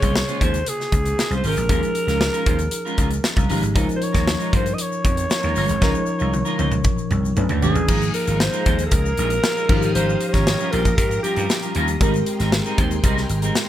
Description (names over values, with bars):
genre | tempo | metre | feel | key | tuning
polished 1980s jazz-funk pop | 116 BPM | 4/4 | straight | Ab major | A4 = 440 Hz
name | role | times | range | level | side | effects
breathy alto saxophone | melody | 0.0-11.7 s | G4 to Eb5 | -25 LUFS | equal | none
tine electric piano | accompaniment | 0.0-13.7 s | C3 to B4 | -27 LUFS | left 2 dB | wide subtle chorus
clean electric guitar | riff | 0.0-13.6 s | G3 to Db5 | -27 LUFS | right 2 dB | lush chorus
vintage slap bass | bass | 0.0-13.5 s | G1 to Ab2 | -23 LUFS | equal | none
modern studio drum kit | drums | 0.0-13.7 s | crash cymbal, hi-hat, kick drum, snare drum, toms | -22 LUFS | equal | none
egg shaker | percussion | 0.0-13.7 s | none | -38 LUFS | left 6 dB | none
string machine, full ensemble | sustained chords | 7.9-13.7 s | Ab3 to Eb6 | -31 LUFS | equal | ensemble chorus
room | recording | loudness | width
light reverb | none | -18 LUFS | side -12 dB against mid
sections
0.0-7.9 A section; 7.9-13.7 B section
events
drum fill 5.8-7.9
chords
0.0 Bbm9; 1.7 Eb9sus4; 7.4 Bm9; 7.9 Ab69; 9.7 Eb9/Ab; 12.0 Abmaj9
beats
0.15 0.67 1.18 | 1.70 2.21 2.73 3.24 | 3.76 4.28 4.79 5.31 | 5.82 6.34 6.85 7.37 | 7.88 8.40 8.92 9.43 | 9.95 10.46 10.98 11.49 | 12.01 12.53 13.04 13.56